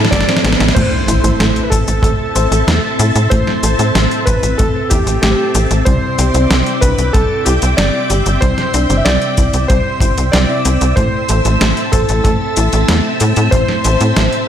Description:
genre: synthwave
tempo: 94 BPM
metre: 4/4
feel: straight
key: A minor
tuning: A4 = 438 Hz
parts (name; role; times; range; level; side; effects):
- warm electric grand piano; melody; 0.0-14.5 s; G4 to E5; -20 LUFS; equal; digital delay, slapback echo
- string machine, full ensemble; sustained chords; 0.0-14.5 s; C4 to E6; -21 LUFS; equal; ensemble chorus, vintage 12-bit sampler grit, sidechain pumping
- FM electric piano with soft pad layer; stabs; 0.0-14.5 s; A2 to E5; -24 LUFS; equal; chorus, tremolo, slapback echo
- tight sequencer bass; bass; 0.0-14.3 s; G1 to A2; -15 LUFS; equal; tube saturation, sidechain pumping
- clean 12-bit digital drum machine; drums; 0.0-14.5 s; crash cymbal, hi-hat, shaker, snare drum; -18 LUFS; equal; none
- thumb-piano-like synth pluck; arpeggios; 0.1-14.4 s; G3 to C5; -23 LUFS; left 1 dB; chorus, tape echo
- kick drum; drums; 0.1-13.7 s; none; -16 LUFS; equal; none
- airy dreamy lead; second line; 0.7-14.5 s; G4 to E5; -24 LUFS; equal; chorus, vintage 12-bit sampler grit, tape echo, slapback echo
- impact; sound effects; 0.8-3.3 s; none; -22 LUFS; equal; none
room: moderate lush hall reverb, RT60 1.7 s, digital ambience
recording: big arena sound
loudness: -11 LUFS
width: side -9 dB against mid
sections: 0.8-14.5 A section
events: drum fill 0.0-0.8; impact 0.8-3.3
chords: 0.0 Amadd9; 0.8 Am; 5.9 Cadd9; 11.0 Am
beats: 0.12 | 0.76 1.40 2.04 2.68 | 3.31 3.95 4.59 5.23 | 5.87 6.51 7.14 7.78 | 8.42 9.06 9.70 10.34 | 10.97 11.61 12.25 12.89 | 13.53 14.16

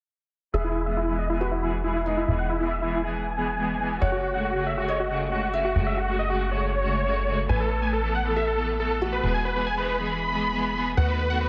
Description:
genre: trance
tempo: 138 BPM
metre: 4/4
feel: straight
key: E major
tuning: A4 = 444 Hz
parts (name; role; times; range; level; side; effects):
- supersaw chords; melody; 0.5-11.5 s; E4 to B5; -29 LUFS; equal; low-pass filter, digital delay
- felt-muted upright piano; second line; 0.5-11.5 s; D#4 to E5; -34 LUFS; equal; dub echo
- clear studio string section; sustained chords; 0.5-11.5 s; C#3 to A4; -32 LUFS; equal; low-pass filter
- plucky analog bass; bass; 0.5-11.5 s; E1 to D#2; -31 LUFS; equal; none
room: moderate lush hall reverb, RT60 2.3 s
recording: dense, heavily limited modern master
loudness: -26 LUFS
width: mono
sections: 0.5-11.5 A section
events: filter sweep on supersaw synth 0.5-11.5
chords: 0.5 E; 4.0 F#madd9; 7.5 Asus2; 9.2 E; 11.0 B7/D#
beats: | 0.54 0.97 1.41 1.84 | 2.28 2.71 3.15 3.58 | 4.02 4.45 4.88 5.32 | 5.75 6.19 6.62 7.06 | 7.49 7.93 8.36 8.80 | 9.23 9.67 10.10 10.54 | 10.97 11.41

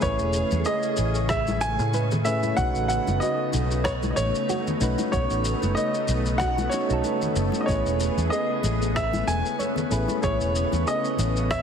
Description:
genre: sunset chillout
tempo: 94 BPM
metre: 4/4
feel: swing 55% on 16ths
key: A lydian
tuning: A4 = 440 Hz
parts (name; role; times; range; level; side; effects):
- clear grand piano; melody; 0.0-11.6 s; C#5 to G#5; -27 LUFS; equal; tape echo
- soft electric-piano-like synth keys; accompaniment; 0.0-11.6 s; A3 to C#5; -30 LUFS; moving between left 4 dB and right 5 dB; chorus, auto-pan, ping-pong delay
- soft string machine; sustained chords; 0.0-11.6 s; C#3 to G#4; -30 LUFS; left 1 dB; ensemble chorus
- soft round pluck; arpeggios; 0.0-11.6 s; F#4 to C#5; -36 LUFS; right 4 dB; chorus, ping-pong delay
- vintage muted fingered electric bass; bass; 0.0-11.6 s; E1 to A2; -26 LUFS; equal; none
- electronic kick drum; drums; 0.0-11.6 s; none; -31 LUFS; equal; none
- electronic shaker and rim click; drums; 0.0-11.6 s; none; -35 LUFS; left 2 dB; none
- congas; percussion; 0.5-11.3 s; none; -34 LUFS; left 4 dB; none
room: moderate digital room reverb, RT60 1.2 s, digital ambience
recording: heavily compressed radio sound, multiband compression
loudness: -22 LUFS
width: side -7 dB against mid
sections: 0.0-11.6 A section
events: none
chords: 0.0 Amaj9; 2.6 B9; 7.7 Amaj9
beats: | 0.03 0.67 1.30 1.94 | 2.58 3.22 3.86 4.49 | 5.13 5.77 6.41 7.05 | 7.69 8.32 8.96 9.60 | 10.24 10.88 11.52

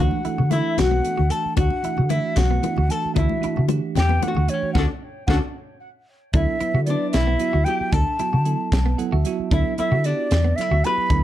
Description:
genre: electric jazz fusion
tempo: 76 BPM (dotted quarters)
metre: 6/8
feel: straight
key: D major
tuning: A4 = 439 Hz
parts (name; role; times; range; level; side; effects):
- mellow hollow silver concert flute; melody; 0.0-11.2 s; C#5 to B5; -26 LUFS; equal; none
- archtop guitar, miked and amplified; second line; 0.0-11.2 s; C#4 to B4; -28 LUFS; left 5 dB; none
- bell-like tine electric piano; accompaniment; 0.0-11.2 s; E3 to F#5; -28 LUFS; right 8 dB; fast stereo tremolo
- clean electric guitar; stabs; 0.0-11.2 s; B3 to F#4; -32 LUFS; right 6 dB; wide subtle chorus
- hollow-body short-scale fingered electric bass; bass; 0.0-11.2 s; B1 to D3; -20 LUFS; equal; none
- congas; percussion; 0.1-5.4 s; none; -29 LUFS; left 12 dB; none
- crisp fusion drum kit; drums; 0.2-11.2 s; hi-hat, kick drum, snare drum; -24 LUFS; equal; none
room: light reverb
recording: dark, warm production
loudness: -18 LUFS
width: side -12 dB against mid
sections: 0.0-6.3 A section; 6.3-11.2 A section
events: band accent 4.8-6.3; tine electric piano fill 5.6-6.3, 8.7-9.5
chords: 0.0 D69; 3.2 G69/D; 4.8 Dmaj7; 6.3 D69; 9.5 G69/D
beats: 0.79 | 1.58 2.38 | 3.17 3.96 | 4.76 5.55 | 6.34 7.14 | 7.93 8.73 | 9.52 10.31 | 11.11

